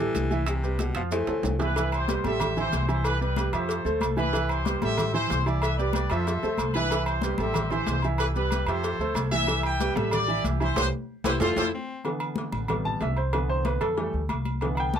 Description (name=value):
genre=latin, salsa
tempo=187 BPM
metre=4/4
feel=straight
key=C major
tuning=A4 = 441 Hz
part: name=raspy baritone saxophone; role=second line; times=0.0-1.6, 11.2-12.0 s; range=B2 to F4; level=-32 LUFS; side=left 3 dB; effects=none
part: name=clear upright piano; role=accompaniment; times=0.0-15.0 s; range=C3 to A5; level=-29 LUFS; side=right 2 dB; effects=none
part: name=upright bass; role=bass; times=0.0-15.0 s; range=A1 to F2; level=-29 LUFS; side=equal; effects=none
part: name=maracas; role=percussion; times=0.0-11.6 s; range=none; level=-42 LUFS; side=right 5 dB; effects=none
part: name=bongos and cowbell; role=percussion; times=0.1-15.0 s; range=none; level=-35 LUFS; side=left 4 dB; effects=none
part: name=congas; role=percussion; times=0.1-15.0 s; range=none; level=-34 LUFS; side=left 3 dB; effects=none
part: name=timbales and agogo bells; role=percussion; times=0.1-14.9 s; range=none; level=-34 LUFS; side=right 3 dB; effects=none
part: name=clear trumpet section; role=melody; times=1.6-11.7 s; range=E4 to G5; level=-29 LUFS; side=equal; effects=none
room=light reverb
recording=close, detailed microphones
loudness=-24 LUFS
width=side -8 dB against mid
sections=0.0-1.8 A section; 1.8-12.1 B section; 12.1-15.0 C section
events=drum fill 1.3-1.8, 6.3-6.9, 10.8-12.1; band accent 10.8-12.1; upright piano solo 12.1-15.0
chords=0.5 Cmaj7; 1.1 Fmaj7; 1.8 Cmaj7; 2.4 Am7; 3.0 Cmaj7; 3.7 Fmaj7; 4.3 Cmaj7; 5.0 Am7; 5.6 Cmaj7; 6.3 Fmaj7; 6.9 Cmaj7; 7.6 Am7; 8.2 Cmaj7; 8.8 Fmaj7; 9.5 Cmaj7; 10.1 Am7; 10.8 C5; 11.4 Fmaj7; 12.1 Asus24; 12.7 Am7; 13.3 Cmaj7; 14.0 Fmaj7